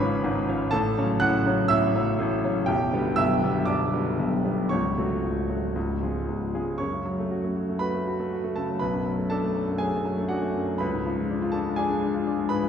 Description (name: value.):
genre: classical, virtuoso piano study.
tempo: 121 BPM.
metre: 4/4.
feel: rubato.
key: F# minor.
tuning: A4 = 440 Hz.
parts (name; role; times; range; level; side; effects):
clear concert grand piano; solo; 0.0-12.7 s; B0 to F#6; -23 LUFS; equal; none.
room: wet church reverb, RT60 3.0 s.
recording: recorded in a church or concert hall, nothing above 10.5 kHz.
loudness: -23 LUFS.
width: side -8 dB against mid.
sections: 0.0-6.8 A section; 6.8-12.7 B section.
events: none.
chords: 0.0 C#7/G#; 0.7 F#m/A; 2.7 G/B; 4.7 F#m/C#; 5.8 C#; 6.8 F#m; 8.8 Bm7; 10.8 C#7b9.